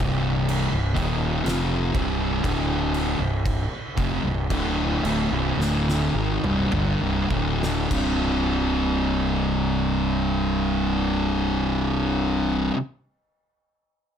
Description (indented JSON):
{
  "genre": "stoner and doom metal",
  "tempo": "49-62 BPM",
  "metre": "4/4",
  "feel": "straight",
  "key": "C minor",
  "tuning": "A4 = 440 Hz",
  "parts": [
    { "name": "thick fuzz guitar", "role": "riff", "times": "0.0-12.8 s", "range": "C2 to F3", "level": "-22 LUFS", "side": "equal", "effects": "distortion" },
    { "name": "fuzz fingered electric bass", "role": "bass", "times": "0.0-12.7 s", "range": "C1 to Ab1", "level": "-27 LUFS", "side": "equal", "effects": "overdrive" },
    { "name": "oversized low-tuned drum kit", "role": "drums", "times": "0.0-8.2 s", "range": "crash cymbal, kick drum, snare drum, toms", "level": "-30 LUFS", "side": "equal", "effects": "none" }
  ],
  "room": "light reverb",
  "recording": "none",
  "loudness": "-21 LUFS",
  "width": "side -8 dB against mid",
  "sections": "0.0-7.9 A section; 7.9-12.8 B section",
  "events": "slowing down 0.0-7.9; drum fill 5.6-7.9",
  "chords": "0.0 Cm; 7.9 C5",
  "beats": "0.48 1.45 2.44 | 3.46 4.51 5.59 6.72 | 7.91 9.12 10.34 11.56"
}